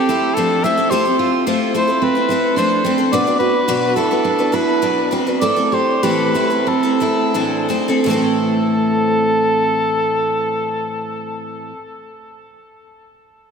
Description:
acoustic folk duo or small band; 81-109 BPM; 4/4; straight; A minor; A4 = 440 Hz
warm cor anglais; melody; 0.0-11.7 s; G4 to E5; -19 LUFS; equal; ping-pong delay
picked twelve-string acoustic guitar; accompaniment; 0.0-11.8 s; A2 to B4; -20 LUFS; left 3 dB; lush chorus
picked steel-string acoustic guitar; arpeggios; 0.0-11.8 s; A3 to A4; -20 LUFS; right 6 dB; ping-pong delay
wet lush hall reverb, RT60 3.0 s; dreamy mix soaked in reverb; -14 LUFS; side -6 dB against mid
0.0-8.1 A section; 8.1-11.0 B section
slowing down 3.1-8.1
0.0 Fmaj7; 3.1 Bm; 5.4 Am

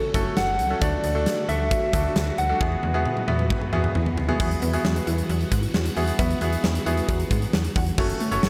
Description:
synth-pop; 134 BPM; 4/4; straight; A4 = 442 Hz
soft struck synth lead; melody; 0.0-3.3 s; A4 to F#5; -28 LUFS; equal; chorus, tremolo, tape echo
bright grand piano; accompaniment; 0.0-8.5 s; A3 to C#5; -30 LUFS; equal
phased string machine; sustained chords; 0.0-7.9 s; C#3 to F#4; -35 LUFS; equal; ensemble chorus, phaser
slap-like FM bass; bass; 0.1-8.5 s; F#1 to G#2; -28 LUFS; equal
huge arena drum kit; drums; 0.1-8.5 s; crash cymbal, hi-hat, kick drum, snare drum, toms; -28 LUFS; equal
unison pluck; arpeggios; 4.4-8.5 s; F#3 to F#5; -35 LUFS; equal
light reverb, small room ambience; -23 LUFS; mono
0.0-4.4 A section; 4.4-8.0 B section
drum fill 2.6-4.4
0.0 F#m; 0.8 D; 2.6 Eadd9; 8.0 F#m

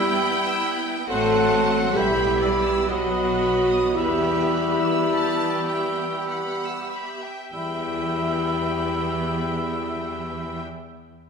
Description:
classical; 47-72 BPM; 3/4; rubato; E minor; A4 = 440 Hz
rich symphonic violin section; melody; 0.0-10.6 s; D5 to A5; -32 LUFS; left 2 dB
clear symphonic violin section; second line; 0.0-10.6 s; C5 to E6; -34 LUFS; equal
hollow silver concert flute; second line; 0.0-10.6 s; B5 to C6; -30 LUFS; equal
warm oboe; second line; 0.0-10.6 s; D#5 to G5; -31 LUFS; right 2 dB
clear symphonic viola section; accompaniment; 0.0-10.6 s; B3 to G4; -30 LUFS; right 1 dB
mellow bassoon; accompaniment; 0.0-10.6 s; E3 to G3; -31 LUFS; equal
warm French horn section; sustained chords; 0.0-10.6 s; E4 to A4; -25 LUFS; left 2 dB
rich symphonic cello section; bass; 0.0-10.6 s; E3 to A3; -32 LUFS; right 4 dB
rich symphonic double bass section; bass; 1.1-10.6 s; A1 to E2; -32 LUFS; right 3 dB
wet scoring stage reverb, RT60 1.8 s; minimal, uncompressed stereo recording; -21 LUFS; side -6 dB against mid
0.0-7.5 A section; 7.5-10.9 B section
slowing down 0.0-7.5
0.0 Em; 1.1 F#dim/A; 1.9 Em/B; 2.9 B; 4.0 Em

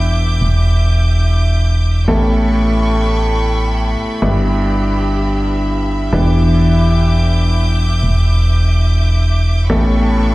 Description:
house; free time; E dorian; A4 = 443 Hz
rich studio violin section; sustained chords; 0.0-10.3 s; G4 to G6; -23 LUFS; right 1 dB
clear upright piano; riff; 0.0-10.3 s; G2 to B4; -17 LUFS; equal; low-pass filter, dub echo
organ-like FM bass; bass; 0.0-10.3 s; E1 to A1; -13 LUFS; equal
light reverb, small room reverb; played on a big sound system in a bare room, stone room reverb; -12 LUFS; side -19 dB against mid
0.0-10.3 A section
0.0 Em7; 2.1 A9; 4.2 G6; 6.1 Em7; 9.7 A9

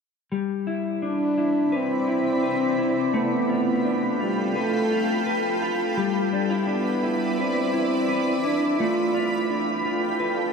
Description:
dream pop; 85 BPM; 4/4; straight; C major; A4 = 442 Hz
granular cloud pad; sustained chords; 1.0-10.5 s; C4 to B5; -26 LUFS; right 2 dB; built-in reverb
mellow electric guitar; arpeggios; 0.3-10.5 s; G3 to B4; -26 LUFS; left 2 dB; wide subtle chorus, ping-pong delay
warm French horn; melody; 1.1-9.5 s; G3 to F4; -25 LUFS; left 1 dB; ping-pong delay
wet huge ambient reverb, RT60 8.1 s; -21 LUFS; side -5 dB against mid
0.3-10.5 A section
0.3 Cmaj9; 3.1 G9; 6.0 Cmaj9; 8.8 G9

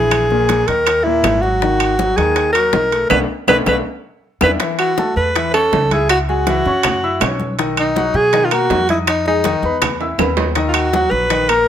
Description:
Afro-Cuban jazz; 161 BPM; 4/4; straight; A4 = 442 Hz
breathy alto saxophone; melody; 0.0-11.7 s; D#4 to B4; -16 LUFS; equal
warm concert grand piano; accompaniment; 0.0-11.7 s; A#2 to E6; -21 LUFS; left 4 dB
upright bass; bass; 0.0-11.6 s; G#1 to B2; -22 LUFS; equal
bongos; percussion; 0.1-11.5 s; -24 LUFS; left 8 dB
claves; percussion; 0.1-11.7 s; -24 LUFS; left 1 dB
congas; percussion; 0.1-11.7 s; -27 LUFS; left 1 dB
timbales; percussion; 0.1-11.7 s; -22 LUFS; right 8 dB
moderate studio reverb, RT60 0.8 s; -13 LUFS; side -9 dB against mid
0.0-4.6 A section; 4.6-11.7 B section
band accent 3.1-4.6; drum fill 3.5-4.6, 10.0-10.6
0.1 Emaj7#11/A#; 0.9 D#5; 1.6 G#m9; 3.1 Bm7; 3.9 E5; 4.6 A69; 6.1 C#madd11; 6.8 F#5; 7.6 Bmaj7; 9.1 Fm7b5; 9.8 E5; 10.6 D#m

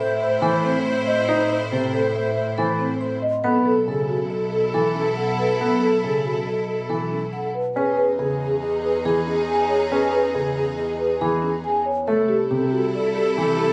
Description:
classical, minimalist pattern music; 139 BPM; 5/4; straight; E major; A4 = 440 Hz
vibraphone with medium mallets; melody; 0.0-13.7 s; G4 to C6; -30 LUFS; equal
hollow alto flute; second line; 0.0-13.7 s; G#4 to C5; -27 LUFS; equal
bright symphonic violin section; sustained chords; 0.0-13.7 s; D#4 to C5; -33 LUFS; equal
marimba with soft mallets; arpeggios; 0.0-13.7 s; C4 to D#5; -28 LUFS; equal
clear symphonic double bass section; bass; 0.0-13.7 s; B1 to A2; -33 LUFS; equal
dark grand piano; accompaniment; 0.4-13.7 s; C3 to D#4; -26 LUFS; equal
light reverb; recorded on a phone in the room, club reverb, compression; -22 LUFS; mono
0.0-13.7 A section
0.0 Am; 3.4 B9sus4; 7.8 Emaj7; 12.1 C6

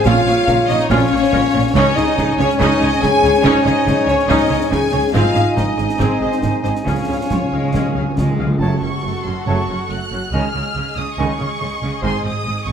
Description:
cinematic, heroic adventure film score; 141 BPM; 4/4; straight; Db major; A4 = 440 Hz
warm symphonic violin section; melody; 0.0-12.7 s; C5 to Gb6; -26 LUFS; left 2 dB
mellow hollow silver concert flute; second line; 0.0-12.2 s; F5 to A5; -25 LUFS; right 2 dB
warm clarinet; second line; 0.0-12.2 s; C5 to F5; -26 LUFS; left 2 dB
warm symphonic violin section; second line; 0.0-12.7 s; Ab4 to Ab5; -26 LUFS; left 2 dB
dark French horn section; sustained chords; 0.0-12.2 s; C4 to Ab4; -20 LUFS; left 4 dB
rich symphonic viola section; accompaniment; 0.1-12.7 s; Eb3 to F5; -25 LUFS; right 1 dB
warm trombone section; sustained chords; 0.1-12.2 s; F2 to F4; -24 LUFS; right 3 dB
rich studio cello section; bass; 0.1-12.7 s; Gb2 to Ab3; -23 LUFS; right 2 dB
rich studio double bass section; bass; 0.1-12.7 s; Gb1 to Db2; -23 LUFS; right 3 dB
concert snare drum, concert bass drum and clash cymbals; drums; 0.1-8.3 s; -24 LUFS; equal
timpani; percussion; 1.7-2.3, 6.9-8.5 s; Db3; -22 LUFS; right 1 dB
moderate scoring stage reverb, RT60 2.0 s; close, detailed microphones; -14 LUFS; side -8 dB against mid
0.0-8.6 A section; 8.6-12.7 B section
timpani fill 6.9-8.6
0.1 Bbm; 1.8 Dbsus2; 5.1 Ab; 6.9 Db; 8.6 Gbm; 10.3 Dbsus2; 12.0 Ab

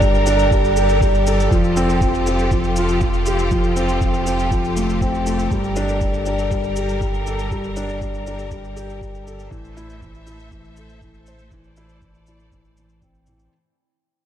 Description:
piano and strings electronica; 120 BPM; 4/4; straight; A4 = 440 Hz
clear studio string section; sustained chords; 0.0-13.5 s; F3 to E5; -26 LUFS; equal; sidechain pumping
felt-muted upright piano; riff; 0.0-13.5 s; E3 to C5; -20 LUFS; equal; diffuse ambient delay
round analog bass; bass; 0.0-13.5 s; F1 to A1; -24 LUFS; equal; sidechain pumping
electronic kick drum; drums; 0.0-13.1 s; -22 LUFS; equal
shaker; drums; 0.0-13.5 s; -36 LUFS; equal
light reverb; -16 LUFS; side -10 dB against mid
0.0-13.5 A section
fade-out 0.0-13.5
0.0 Gmadd9; 1.5 Fadd9; 5.5 Gmadd9; 9.5 Am

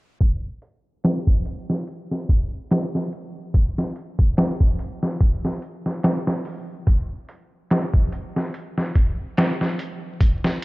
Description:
trip hop; 72 BPM; 4/4; swing 56% on 16ths
trip hop sampler-style drum kit; drums; 0.2-10.6 s; hi-hat, kick drum, snare drum; -20 LUFS; equal; studio reverb
light reverb; dark, warm production, vinyl crackle, low-pass filter; -20 LUFS; side -22 dB against mid
0.2-10.6 A section
filter sweep 0.2-10.6

